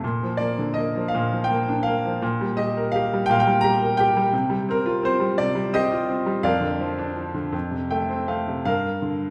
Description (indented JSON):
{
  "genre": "classical, lyrical solo piano",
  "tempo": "56 BPM (dotted quarters)",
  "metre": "6/8",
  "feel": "uneven beats, rubato",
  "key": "Bb major",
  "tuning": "A4 = 440 Hz",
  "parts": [
    { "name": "clear grand piano", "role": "solo", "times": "0.0-9.3 s", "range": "F2 to Bb5", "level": "-23 LUFS", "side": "equal", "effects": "none" }
  ],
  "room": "wet recital hall reverb, RT60 1.6 s",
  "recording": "recorded in a church or concert hall",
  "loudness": "-23 LUFS",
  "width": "mono",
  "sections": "0.0-8.7 A section",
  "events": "grand piano fill 7.5-8.7",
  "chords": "0.0 Bb; 2.2 Ebadd9/Bb; 4.3 Csus4; 6.4 Bb/F; 7.5 F; 8.7 Gm7"
}